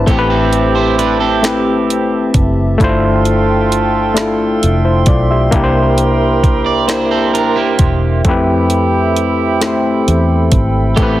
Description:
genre	slow six-eight R&B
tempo	44 BPM (dotted quarters)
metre	6/8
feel	straight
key	unclear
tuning	A4 = 440 Hz
part	overdriven reed electric piano	accompaniment	0.0-11.2 s	A3 to E5	-15 LUFS	left 3 dB	none
part	hollow soft pad	sustained chords	0.0-11.2 s	C4 to C6	-22 LUFS	right 3 dB	chorus
part	vintage muted fingered electric bass	bass	0.0-11.2 s	E1 to F2	-16 LUFS	equal	none
part	electric guitar at the edge of break-up	second line	0.1-2.5, 6.7-11.2 s	Bb3 to D5	-18 LUFS	right 6 dB	spring reverb, slapback echo
part	mellow horn section	stabs	0.1-11.2 s	A3 to B4	-19 LUFS	right 5 dB	none
part	smooth R&B drum kit	drums	0.1-11.2 s	hi-hat, kick drum, snare drum	-15 LUFS	equal	none
room	light reverb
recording	dense, heavily limited modern master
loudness	-11 LUFS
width	side -14 dB against mid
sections	0.0-11.2 A section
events	none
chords	0.1 Am7; 2.8 G13sus4; 5.5 C7; 8.2 Fmaj9#11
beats	| 0.07 1.43 | 2.79 4.16 | 5.52 6.88 | 8.25 9.61 | 10.97

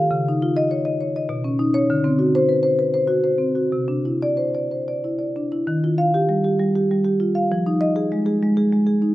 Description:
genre	classical, contemporary piece for solo marimba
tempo	91-102 BPM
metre	3/4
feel	rubato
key	Eb major from 5.7 s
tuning	A4 = 440 Hz
part	marimba with medium mallets	solo	0.0-9.1 s	B2 to F5	-18 LUFS	equal	none
room	moderate recital hall reverb, RT60 1.7 s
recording	close, detailed microphones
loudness	-18 LUFS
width	side -16 dB against mid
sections	0.0-5.7 A section; 5.7-9.1 B section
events	none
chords	0.1 Dbadd9; 1.3 Badd9; 1.9 D7; 3.7 Cadd9; 5.7 Ebadd9; 7.5 Fm7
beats	| 0.10 0.70 1.29 | 1.89 2.49 3.09 | 3.73 4.39 5.04 | 5.67 6.29 6.90 | 7.50 8.11 8.72

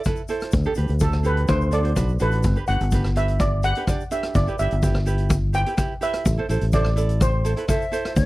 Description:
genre	calypso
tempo	126 BPM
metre	4/4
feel	straight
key	unclear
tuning	A4 = 440 Hz
part	steel pan	melody	0.0-8.3 s	A4 to G5	-26 LUFS	right 1 dB	none
part	tube shaker	percussion	0.0-8.3 s	none	-42 LUFS	left 12 dB	none
part	ukulele	accompaniment	0.1-8.1 s	D4 to D5	-29 LUFS	right 4 dB	none
part	street-band drum kit	drums	0.1-8.3 s	hi-hat, kick drum, rim click	-24 LUFS	equal	none
part	fingered electric bass	bass	0.5-8.3 s	G1 to D2	-21 LUFS	equal	none
part	wooden flute	second line	7.7-8.3 s	D5 to E5	-28 LUFS	left 3 dB	none
room	little or no reverb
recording	dry, close 1970s-style studio recording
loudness	-19 LUFS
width	side -19 dB against mid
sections	0.0-8.3 A section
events	steel pan solo 0.0-8.3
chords	0.0 Am; 0.5 Dsus4; 1.5 D7; 2.4 Gmaj7; 4.4 Em/G; 6.3 Am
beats	0.07 | 0.54 1.02 1.49 1.97 | 2.45 2.92 3.40 3.88 | 4.35 4.83 5.31 5.78 | 6.26 6.74 7.21 7.69 | 8.16

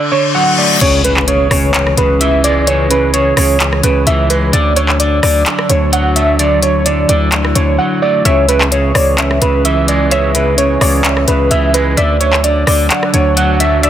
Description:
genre	hip hop, trap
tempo	129 BPM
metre	4/4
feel	half-time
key	C# phrygian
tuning	A4 = 440 Hz
part	warbly lo-fi synth keys	melody	0.0-13.9 s	B4 to F#5	-14 LUFS	right 2 dB	chorus, tape echo
part	electric guitar at the edge of break-up	accompaniment	0.0-13.9 s	C#3 to A3	-17 LUFS	right 1 dB	none
part	reverse cymbal and impact	sound effects	0.0-2.7 s	none	-19 LUFS	left 3 dB	none
part	dark analog pad	sustained chords	1.4-13.9 s	E3 to D5	-22 LUFS	right 1 dB	chorus
part	distorted 808-style bass	bass	0.8-13.9 s	C#2 to D2	-15 LUFS	equal	distortion
part	trap drum kit	drums	0.8-13.9 s	crash cymbal, handclaps, hi-hat, rim click	-16 LUFS	left 2 dB	soft clipping on snare
part	warbly dusty pluck	second line	8.3-13.9 s	D5 to F#5	-21 LUFS	left 1 dB	chorus, tape echo
room	light reverb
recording	dense, heavily limited modern master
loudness	-10 LUFS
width	side -11 dB against mid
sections	0.8-13.9 A section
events	break 0.0-0.8; reverse cymbal 0.0-0.8; impact 0.8-2.7; drums muted 7.8-8.3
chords	0.0 D; 0.8 C#m7; 4.5 D; 8.3 C#m7; 12.0 D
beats	0.35 | 0.81 1.28 1.74 2.21 | 2.67 3.14 3.60 4.07 | 4.53 5.00 5.46 5.93 | 6.39 6.86 7.32 7.79 | 8.25 8.72 9.18 9.65 | 10.11 10.58 11.04 11.51 | 11.97 12.44 12.90 13.37 | 13.84

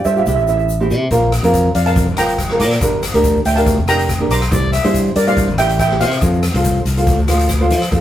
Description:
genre	calypso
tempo	141 BPM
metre	4/4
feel	swing 53% on 16ths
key	F major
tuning	A4 = 440 Hz
part	steel pan	melody	0.0-7.5 s	Bb4 to D6	-18 LUFS	right 2 dB	none
part	tube shaker	percussion	0.0-8.0 s	none	-32 LUFS	left 4 dB	none
part	modern bright fingered electric bass	bass	0.1-8.0 s	F1 to F3	-17 LUFS	left 1 dB	none
part	nylon-string guitar	accompaniment	0.2-8.0 s	C4 to D5	-18 LUFS	right 1 dB	none
part	street-band drum kit	drums	1.1-8.0 s	hi-hat, kick drum, rim click	-20 LUFS	equal	none
part	clear trumpet	second line	4.3-5.0 s	C5 to E5	-22 LUFS	left 5 dB	none
room	moderate studio reverb, RT60 0.6 s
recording	rough rehearsal-room recording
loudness	-13 LUFS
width	side -12 dB against mid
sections	0.0-7.9 A section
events	none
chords	0.3 C; 1.1 Bbsus2; 2.8 Gm7; 4.5 Cadd9; 6.2 F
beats	0.26 0.69 | 1.11 1.54 1.96 2.39 | 2.81 3.24 3.67 4.09 | 4.51 4.94 5.37 5.79 | 6.22 6.64 7.07 7.49 | 7.92

